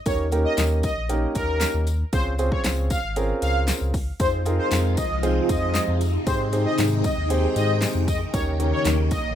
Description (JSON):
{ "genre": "dance-pop", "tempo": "116 BPM", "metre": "4/4", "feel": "straight", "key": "unclear", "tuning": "A4 = 440 Hz", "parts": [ { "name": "soft supersaw", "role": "melody", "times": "0.1-9.3 s", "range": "Bb4 to F5", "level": "-28 LUFS", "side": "left 1 dB", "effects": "phaser, sidechain pumping, ping-pong delay" }, { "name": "warm concert grand piano", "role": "accompaniment", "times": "0.1-9.2 s", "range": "Bb3 to Db5", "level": "-27 LUFS", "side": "right 2 dB", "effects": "sidechain pumping" }, { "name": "sub bass with octave", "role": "bass", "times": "0.1-9.3 s", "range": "Ab1 to Ab2", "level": "-24 LUFS", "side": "equal", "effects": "sidechain pumping" }, { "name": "pop drum kit", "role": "drums", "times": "0.1-9.2 s", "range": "handclaps, hi-hat, kick drum, snare drum", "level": "-27 LUFS", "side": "equal", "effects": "overdrive" }, { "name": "tambourine", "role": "percussion", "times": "0.1-9.2 s", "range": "none", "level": "-37 LUFS", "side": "left 8 dB", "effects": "none" }, { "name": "phased string machine", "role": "sustained chords", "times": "4.2-9.3 s", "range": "C3 to G5", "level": "-27 LUFS", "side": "left 1 dB", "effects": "ensemble chorus, phaser, sidechain pumping" } ], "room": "light reverb", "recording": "rough home demo mix", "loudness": "-20 LUFS", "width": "side -10 dB against mid", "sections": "0.0-9.3 A section", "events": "none", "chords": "0.1 Eb7; 2.1 Dbmaj7; 4.2 Fm7; 6.3 Abmaj7; 8.3 Eb7", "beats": "| 0.06 0.58 1.09 1.61 | 2.13 2.65 3.16 3.68 | 4.20 4.71 5.23 5.75 | 6.27 6.78 7.30 7.82 | 8.34 8.85" }